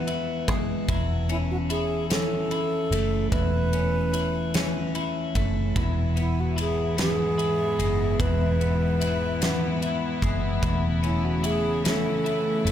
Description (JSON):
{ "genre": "six-eight pop ballad", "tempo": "49 BPM (dotted quarters)", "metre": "6/8", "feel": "straight", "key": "unclear", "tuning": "A4 = 439 Hz", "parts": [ { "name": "reedy wooden-headed alto flute", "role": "melody", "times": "0.0-12.7 s", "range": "E4 to B4", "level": "-29 LUFS", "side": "right 2 dB", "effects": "plate reverb, digital delay" }, { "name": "twelve-string electric guitar", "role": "accompaniment", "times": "0.0-12.7 s", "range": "E2 to E4", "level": "-27 LUFS", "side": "left 2 dB", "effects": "none" }, { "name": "vintage muted fingered electric bass", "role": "bass", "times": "0.0-12.7 s", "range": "E1 to F#1", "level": "-28 LUFS", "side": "right 1 dB", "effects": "none" }, { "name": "huge arena drum kit", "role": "drums", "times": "0.1-12.7 s", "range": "kick drum, ride cymbal, snare drum", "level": "-30 LUFS", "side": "equal", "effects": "none" }, { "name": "dark studio string section", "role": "sustained chords", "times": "5.8-12.7 s", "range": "G#2 to E4", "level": "-30 LUFS", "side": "left 1 dB", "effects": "none" } ], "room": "light reverb", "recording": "none", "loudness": "-22 LUFS", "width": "side -10 dB against mid", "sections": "0.0-12.7 A section", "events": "none", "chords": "0.0 E; 0.9 Aadd9/E", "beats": "| 0.89 2.10 | 3.32 4.54 | 5.76 6.97 | 8.19 9.41 | 10.63 11.85" }